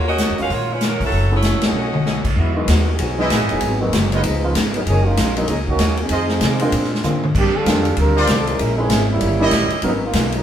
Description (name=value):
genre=jazz, big band swing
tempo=193 BPM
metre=4/4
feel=swing 62% on 8ths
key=Eb minor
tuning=A4 = 441 Hz
part: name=clear saxophone section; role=melody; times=0.0-2.3 s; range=Gb3 to F5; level=-21 LUFS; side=right 1 dB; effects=none
part: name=vintage hollow-body jazz guitar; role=accompaniment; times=0.0-10.4 s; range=F2 to G#4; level=-30 LUFS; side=left 2 dB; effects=none
part: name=upright bass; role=bass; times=0.0-10.4 s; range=E1 to C3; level=-20 LUFS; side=equal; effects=none
part: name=swinging big-band drum kit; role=drums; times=0.2-10.4 s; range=crash cymbal, hi-hat, kick drum, ride cymbal, snare drum, toms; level=-21 LUFS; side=left 1 dB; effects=none
part: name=warm baby grand piano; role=accompaniment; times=0.4-10.0 s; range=E3 to Bb4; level=-23 LUFS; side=equal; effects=none
part: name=warm trombone section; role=second line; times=2.3-10.4 s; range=D#3 to Bb4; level=-21 LUFS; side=right 1 dB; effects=none
part: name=clear trumpet section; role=stabs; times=3.2-9.8 s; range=E4 to Eb5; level=-22 LUFS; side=right 1 dB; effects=none
room=moderate studio reverb, RT60 0.5 s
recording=band playing live in one room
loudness=-15 LUFS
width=side -10 dB against mid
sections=0.0-2.4 A section; 2.4-10.4 B section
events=band accent 1.6; drum fill 1.7-2.1, 7.0-7.4; trombone section solo 2.4-10.4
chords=0.0 Ebm11; 1.1 Gbm7; 1.7 B13; 2.4 Emaj9; 3.6 Abm7; 4.2 Db9; 4.9 Gb69; 6.1 Fm7; 6.7 Bb9; 7.4 Ebmaj13; 8.6 Bbm7b5; 9.2 Eb7b9; 9.8 Abm11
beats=0.19 0.50 0.81 | 1.13 1.44 1.75 2.06 | 2.37 2.68 3.00 3.31 | 3.62 3.93 4.24 4.55 | 4.86 5.17 5.49 5.80 | 6.11 6.42 6.73 7.04 | 7.35 7.66 7.97 8.28 | 8.60 8.90 9.22 9.53 | 9.84 10.15